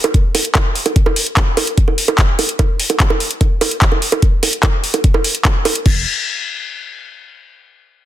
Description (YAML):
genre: psychedelic trance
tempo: 147 BPM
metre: 4/4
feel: straight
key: unclear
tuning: A4 = 440 Hz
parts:
  - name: garage drum kit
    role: drums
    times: 0.0-5.9 s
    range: bongos, crash cymbal, handclaps, hi-hat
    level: -16 LUFS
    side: right 1 dB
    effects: none
  - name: electronic kick drum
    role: drums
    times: 0.1-5.9 s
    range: none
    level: -14 LUFS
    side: equal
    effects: none
  - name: round analog bass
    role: bass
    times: 5.9-6.0 s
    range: F1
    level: -23 LUFS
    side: equal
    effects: none
room: little or no reverb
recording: dense, heavily limited modern master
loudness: -13 LUFS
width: side -13 dB against mid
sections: 0.0-5.9 A section; 5.9-7.5 B section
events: none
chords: none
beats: 0.14 0.55 | 0.96 1.37 1.77 2.18 | 2.59 3.00 3.41 3.82 | 4.22 4.63 5.04 5.45 | 5.86